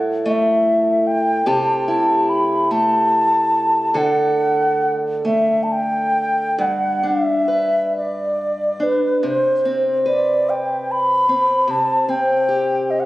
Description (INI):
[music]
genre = celtic folk, Celtic slow air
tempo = 44-51 BPM (dotted quarters)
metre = 6/8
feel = rubato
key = G major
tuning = A4 = 443 Hz
[part]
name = fingerpicked steel-string acoustic guitar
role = accompaniment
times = 0.0-13.1 s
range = G2 to B4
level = -21 LUFS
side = equal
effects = none
[part]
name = mellow baroque flute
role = melody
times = 0.3-13.1 s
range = B4 to B5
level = -17 LUFS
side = equal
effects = none
[sound]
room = moderate recital hall reverb, RT60 1.4 s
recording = recorded on a phone in the room, studio reverb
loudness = -16 LUFS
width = side -17 dB against mid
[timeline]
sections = 0.0-6.6 A section; 6.6-13.1 B section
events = none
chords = 0.0 A5; 1.5 C6; 3.9 D; 6.6 G; 9.2 Gadd11/C (rootless); 11.7 C5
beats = 0.26 | 1.48 2.71 | 3.95 5.25 | 6.59 7.93 | 9.23 10.48 | 11.70 12.89